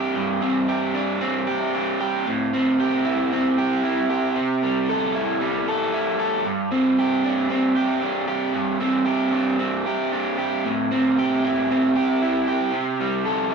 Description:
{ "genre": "rock", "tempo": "114 BPM", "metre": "4/4", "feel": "straight", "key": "unclear", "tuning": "A4 = 440 Hz", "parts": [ { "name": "crunchy overdriven guitar", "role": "solo", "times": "0.0-13.5 s", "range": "G2 to A4", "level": "-20 LUFS", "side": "right 1 dB", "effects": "none" } ], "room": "wet small room reverb, RT60 0.5 s", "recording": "rough rehearsal-room recording, small room ambience", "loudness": "-20 LUFS", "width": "side -5 dB against mid", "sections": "0.0-13.5 A section", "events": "none", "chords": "0.0 Gsus4; 2.3 Am7; 4.4 C6; 6.5 Gsus4; 10.6 Am7; 12.7 C5", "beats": "| 0.16 0.68 1.21 1.73 | 2.26 2.78 3.31 3.83 | 4.36 4.89 5.41 5.94 | 6.46 6.99 7.51 8.03 | 8.56 9.08 9.60 10.12 | 10.65 11.17 11.69 12.21 | 12.73 13.26" }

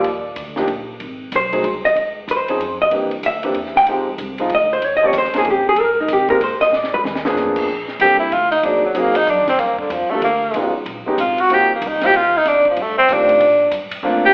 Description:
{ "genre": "jazz, small-group swing and bop", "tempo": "189 BPM", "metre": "3/4", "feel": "swing 63% on 8ths", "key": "Eb major, Bb major from 7.7 s", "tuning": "A4 = 441 Hz", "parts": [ { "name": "vintage hollow-body jazz guitar", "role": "melody", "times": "0.0-7.0 s", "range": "Eb4 to G5", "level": "-16 LUFS", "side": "equal", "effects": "plate reverb, slapback echo" }, { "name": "warm grand piano", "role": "accompaniment", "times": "0.0-14.3 s", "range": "Eb3 to A4", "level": "-20 LUFS", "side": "equal", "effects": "plate reverb, slapback echo" }, { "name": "upright bass", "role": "bass", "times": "0.0-14.3 s", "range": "Ab1 to C3", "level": "-32 LUFS", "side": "equal", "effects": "none" }, { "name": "compact cocktail drum kit", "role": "drums", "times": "0.0-14.1 s", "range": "crash cymbal, hi-hat, kick drum, ride cymbal, snare drum, toms", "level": "-29 LUFS", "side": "equal", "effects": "none" }, { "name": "clear tenor saxophone", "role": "second line", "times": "8.0-14.3 s", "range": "D3 to G4", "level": "-13 LUFS", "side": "equal", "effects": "plate reverb" } ], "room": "moderate club reverb, RT60 0.5 s", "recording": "live gig heard through the venue's PA, club reverb, telephone sound", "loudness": "-14 LUFS", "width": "side -32 dB against mid", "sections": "0.1-7.7 A section; 7.7-14.3 A section", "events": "hollow-body jazz guitar solo 0.0-7.7; drum fill 6.7-7.4; tenor saxophone solo 7.7-14.3", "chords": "0.1 Ebmaj7(no3); 1.0 Ab; 2.0 Dbmaj9; 2.9 C7; 3.9 Fm9; 4.8 Eb7sus2; 5.8 Abadd9; 6.7 Bb7b9; 7.7 Bbmaj9; 8.6 Ab9; 9.6 Gm7; 10.5 Db9; 11.5 Eb69; 12.5 F9; 13.4 Bbmaj9", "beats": "| 0.05 0.37 0.69 | 1.01 1.32 1.64 | 1.96 2.28 2.60 | 2.91 3.23 3.55 | 3.87 4.19 4.50 | 4.82 5.14 5.46 | 5.78 6.10 6.42 | 6.73 7.05 7.37 | 7.69 8.01 8.32 | 8.64 8.96 9.28 | 9.59 9.91 10.23 | 10.55 10.87 11.18 | 11.50 11.82 12.14 | 12.45 12.77 13.09 | 13.40 13.72 14.04" }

